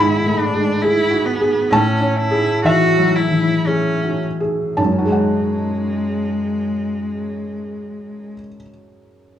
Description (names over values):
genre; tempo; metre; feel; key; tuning
neoclassical piano and strings; 52-72 BPM; 3/4; rubato; F# minor; A4 = 440 Hz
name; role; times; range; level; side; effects
rich cello; second line; 0.0-8.3 s; G#3 to F#4; -21 LUFS; right 1 dB; none
felt-muted upright piano; accompaniment; 0.0-9.4 s; F#2 to B5; -17 LUFS; equal; none
room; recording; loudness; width
moderate booth ambience, RT60 0.2 s; studio reverb; -15 LUFS; side -10 dB against mid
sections
0.0-4.8 A section; 4.8-8.2 B section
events
slowing down 0.0-4.8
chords
0.0 G#m7b5; 1.7 Amaj7; 4.8 F#madd9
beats
0.83 | 1.71 2.65 3.66 | 4.78 5.90 7.04